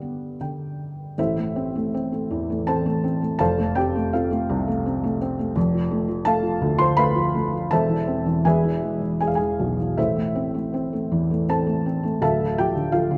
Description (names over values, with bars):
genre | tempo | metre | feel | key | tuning
classical, lyrical solo piano | 82 BPM | 3/4 | uneven beats, rubato | A minor | A4 = 439 Hz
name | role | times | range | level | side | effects
felt-muted upright piano | solo | 0.0-13.2 s | D1 to C6 | -23 LUFS | equal | none
room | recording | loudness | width
moderate scoring stage reverb, RT60 1.8 s | dark, warm production | -23 LUFS | mono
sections
0.0-1.2 A section; 1.2-13.2 B section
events
felt piano fill 0.0-1.2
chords
0.0 G; 1.2 Am; 3.4 F; 5.6 Dm/F; 7.7 Am/E; 8.4 E; 10.0 Am; 12.2 Dmadd9